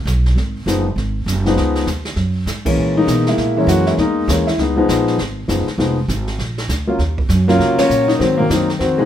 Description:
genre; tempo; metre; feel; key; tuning
jazz piano trio; 199 BPM; 4/4; swing 62% on 8ths; Db mixolydian; A4 = 438 Hz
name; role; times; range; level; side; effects
upright bass; bass; 0.0-9.1 s; F1 to Db3; -19 LUFS; right 1 dB; none
jazz brush drum kit; drums; 0.1-9.1 s; brushed snare drum, crash cymbal, hi-hat, kick drum, ride cymbal, snare drum; -26 LUFS; right 2 dB; none
dark baby grand piano; melody; 0.7-9.1 s; C3 to Gb4; -15 LUFS; left 2 dB; none
room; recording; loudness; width
light reverb; minimal, uncompressed stereo recording; -14 LUFS; side -10 dB against mid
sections
0.0-9.1 A section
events
band accent 2.6, 7.7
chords
0.0 Db7(no3) (rootless); 1.0 Ab7(no3); 1.6 Db9; 2.2 Gb9; 4.6 Db9; 5.8 Fm7b5; 6.4 Bb; 7.0 Ebm7; 8.2 Ab9

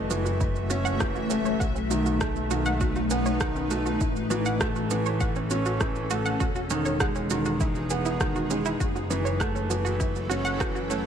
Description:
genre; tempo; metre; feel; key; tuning
piano and strings electronica; 100 BPM; 4/4; straight; F# dorian; A4 = 436 Hz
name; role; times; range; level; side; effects
granular cloud pad; sustained chords; 0.0-11.1 s; F#3 to E5; -31 LUFS; left 2 dB; built-in reverb, sidechain pumping
clear upright piano; riff; 0.0-11.1 s; D#3 to C#4; -29 LUFS; right 2 dB; digital delay
clear chamber double bass section; bass; 0.0-11.1 s; E1 to B1; -30 LUFS; left 1 dB; tube saturation, sidechain pumping
sub drop; sound effects; 0.0-1.6 s; none; -44 LUFS; left 1 dB; none
analog pluck; arpeggios; 0.1-11.0 s; C#4 to F#5; -33 LUFS; right 3 dB; chorus, sidechain pumping, digital delay
electronic shaker and rim click; drums; 0.1-11.0 s; none; -33 LUFS; right 2 dB; none
electronic kick drum; drums; 0.4-10.7 s; none; -29 LUFS; left 1 dB; none
room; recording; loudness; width
light reverb; none; -24 LUFS; side -8 dB against mid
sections
0.0-11.1 A section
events
impact 0.0-1.6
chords
0.0 F#m7; 1.6 B7; 4.0 A; 6.4 Emaj7; 8.8 F#m7

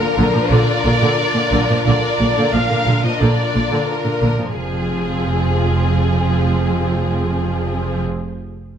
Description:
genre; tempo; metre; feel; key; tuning
cinematic; 89 BPM; 4/4; straight; F dorian; A4 = 440 Hz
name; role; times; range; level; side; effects
warm symphonic violin section; melody; 0.0-8.0 s; Ab4 to F5; -22 LUFS; left 2 dB; none
warm symphonic violin section; second line; 0.0-8.0 s; F4 to Bb4; -24 LUFS; left 3 dB; none
warm studio viola section; accompaniment; 0.0-8.0 s; D3 to D4; -23 LUFS; equal; none
warm symphonic cello section; bass; 0.0-8.0 s; F2 to Bb2; -21 LUFS; right 1 dB; none
warm symphonic double bass section; bass; 0.2-8.0 s; F1 to Bb1; -20 LUFS; right 2 dB; none
room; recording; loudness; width
wet recital hall reverb, RT60 1.5 s; none; -15 LUFS; side -8 dB against mid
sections
0.0-4.6 A section; 4.6-7.3 B section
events
none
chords
0.0 Bb; 4.6 Fm

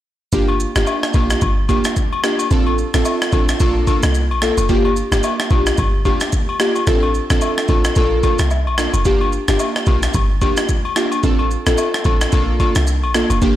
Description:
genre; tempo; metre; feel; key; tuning
afrobeats; 110 BPM; 4/4; swing 58% on 16ths; G minor; A4 = 441 Hz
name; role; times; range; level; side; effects
glassy digital keys; accompaniment; 0.3-13.6 s; Bb3 to A4; -19 LUFS; equal; chorus
deep log drum bass; bass; 0.3-13.6 s; F1 to C2; -18 LUFS; equal; none
jungle sampler-style drum kit; drums; 0.3-13.6 s; kick drum, rim click, shaker; -19 LUFS; equal; soft clipping on snare
agogo bells and woodblock; percussion; 0.5-13.4 s; none; -24 LUFS; left 4 dB; none
room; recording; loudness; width
light reverb; blown-out, overdriven recording, overdrive; -14 LUFS; side -13 dB against mid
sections
0.3-13.6 A section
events
none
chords
0.3 Gm7; 2.5 Dm7/A; 3.6 Bbmaj7; 4.7 Gm7; 6.9 Dm7/A; 8.0 Bbmaj7; 9.1 Gm7; 11.2 Dm7/A; 12.3 Bbmaj7

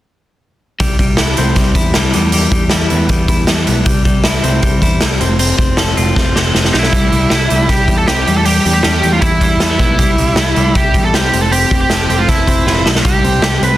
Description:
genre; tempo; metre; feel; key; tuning
jangly indie pop; 157 BPM; 4/4; straight; C major; A4 = 438 Hz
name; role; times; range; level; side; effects
twelve-string electric guitar; arpeggios; 0.8-13.8 s; G3 to A4; -18 LUFS; left 3 dB; spring reverb
picked electric bass; bass; 0.8-13.8 s; F1 to E2; -17 LUFS; equal; none
raw garage drum kit; drums; 0.8-13.7 s; hi-hat, kick drum, snare drum; -14 LUFS; equal; none
high-gain lead guitar; melody; 6.7-13.8 s; E4 to B4; -15 LUFS; right 2 dB; distortion
room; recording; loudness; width
small room ambience; dense, heavily limited modern master; -10 LUFS; side -14 dB against mid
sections
0.8-6.9 A section; 6.9-13.8 B section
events
drum fill 6.2-6.9, 12.7-13.0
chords
0.8 C; 2.1 Em; 3.9 C; 5.2 F; 6.9 C; 8.3 Em; 10.0 C; 11.3 F; 13.0 C5

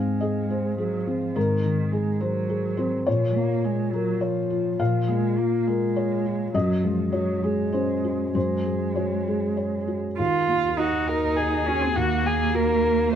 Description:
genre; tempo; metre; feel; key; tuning
neoclassical piano and strings; 96-107 BPM; 3/4; rubato; Eb dorian; A4 = 440 Hz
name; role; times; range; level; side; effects
muted cello; second line; 0.0-13.2 s; Eb3 to F4; -27 LUFS; right 6 dB; none
felt-muted upright piano; accompaniment; 0.0-13.2 s; Eb2 to F5; -24 LUFS; left 2 dB; none
muted double bass; bass; 10.2-13.2 s; Eb2; -30 LUFS; equal; none
muted violin; melody; 10.8-13.2 s; Gb4 to Bb4; -23 LUFS; left 4 dB; none
room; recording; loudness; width
moderate studio ambience, RT60 0.4 s; band playing live in one room; -22 LUFS; side -9 dB against mid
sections
0.0-10.2 A section; 10.2-13.2 A section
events
none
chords
0.0 Ab; 3.1 Bbm; 6.5 Gbsus2; 10.2 Ebm

